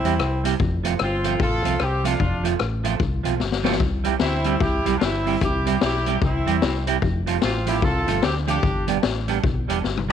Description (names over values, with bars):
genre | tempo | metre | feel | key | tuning
ska | 149 BPM | 4/4 | swing 62% on 8ths | C major | A4 = 440 Hz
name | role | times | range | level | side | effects
clear horn section | melody | 0.0-8.9 s | C4 to A4 | -25 LUFS | equal | none
semi-hollow electric guitar | accompaniment | 0.0-10.1 s | F3 to G4 | -26 LUFS | right 14 dB | tape echo
street-band drum kit | drums | 0.0-10.1 s | hi-hat, kick drum, rim click, snare drum, toms | -24 LUFS | left 4 dB | none
fingered electric bass | bass | 0.1-10.1 s | E1 to E2 | -25 LUFS | equal | transformer saturation
room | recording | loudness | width
studio reverb | 1960s-style stereo | -19 LUFS | side -8 dB against mid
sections
0.0-10.1 A section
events
drum fill 3.4-3.8, 9.8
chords
0.0 C; 0.6 F; 3.8 C; 7.0 F; 8.6 G